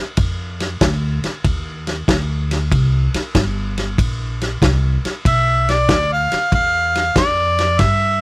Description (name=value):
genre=electric blues shuffle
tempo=95 BPM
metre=4/4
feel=swing 67% on 8ths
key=C mixolydian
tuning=A4 = 442 Hz
part: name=upright bass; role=bass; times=0.2-8.2 s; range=G1 to G2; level=-20 LUFS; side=equal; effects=none
part: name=warm soul drum kit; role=drums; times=0.2-8.0 s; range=kick drum, ride cymbal, snare drum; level=-19 LUFS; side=equal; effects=none
part: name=mellow harmonica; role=melody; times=5.3-8.2 s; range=D5 to F5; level=-15 LUFS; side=equal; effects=overdrive
room=light reverb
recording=none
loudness=-15 LUFS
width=side -22 dB against mid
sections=0.0-8.2 A section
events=none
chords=0.0 F7(no3); 2.7 C5; 5.3 G7